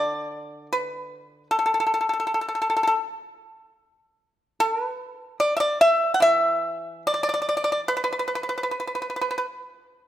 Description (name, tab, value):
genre	chinese traditional, Chinese solo plucked strings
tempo	70-80 BPM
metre	4/4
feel	rubato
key	unclear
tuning	A4 = 445 Hz
part	pipa	solo	0.0-9.4 s	D3 to F#5	-21 LUFS	equal	none
room	moderate recital hall reverb, RT60 1.6 s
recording	none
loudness	-21 LUFS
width	side -12 dB against mid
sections	0.0-10.1 A section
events	none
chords	none